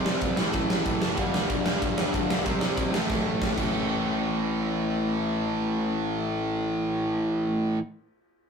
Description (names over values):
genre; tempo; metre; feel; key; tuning
punk rock; 188 BPM; 4/4; straight; unclear; A4 = 440 Hz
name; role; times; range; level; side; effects
distorted electric guitar; riff; 0.0-7.8 s; G2 to C4; -31 LUFS; left 8 dB; overdrive
tight distorted guitar; riff; 0.0-7.8 s; G2 to C4; -28 LUFS; right 4 dB; distortion
fuzz picked electric bass; bass; 0.0-7.7 s; E1 to C3; -35 LUFS; equal; overdrive
big rock drum kit; drums; 0.1-3.7 s; crash cymbal, kick drum, ride cymbal, snare drum; -28 LUFS; right 1 dB; none
room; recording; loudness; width
light reverb; rough rehearsal-room recording, tube saturation; -24 LUFS; side -6 dB against mid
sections
0.0-3.7 A section; 3.7-6.3 B section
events
drum fill 3.1-3.7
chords
0.4 A5; 1.2 G; 2.5 C5; 2.9 A5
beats
0.23 0.55 0.87 | 1.19 1.50 1.82 2.14 | 2.46 2.78 3.10 3.42 | 3.74 4.06 4.38 4.70 | 5.02 5.33 5.65 5.97